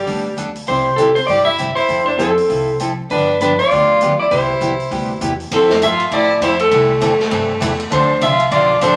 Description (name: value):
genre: country, western swing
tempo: 199 BPM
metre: 4/4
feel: swing 61% on 8ths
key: C major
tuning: A4 = 440 Hz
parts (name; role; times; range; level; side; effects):
- clean lap steel guitar; melody; 0.0-9.0 s; G4 to E5; -17 LUFS; equal; none
- clear fiddle; second line; 0.0-9.0 s; G3 to G4; -23 LUFS; equal; none
- picked steel-string acoustic guitar; accompaniment; 0.1-8.9 s; C3 to A4; -24 LUFS; equal; none
- upright bass; bass; 0.1-9.0 s; A1 to A2; -29 LUFS; equal; none
- swinging big-band drum kit; drums; 0.1-8.9 s; hi-hat, ride cymbal, snare drum; -30 LUFS; equal; none
room: wet studio reverb, RT60 0.8 s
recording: vinyl crackle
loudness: -16 LUFS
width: mono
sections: 0.0-5.5 A section; 5.5-9.0 B section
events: none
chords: 0.0 Gadd9; 0.7 C; 1.9 Fmaj7; 3.1 G7; 4.3 Cmaj7; 5.5 Fmaj7; 6.7 C6; 7.9 Dm7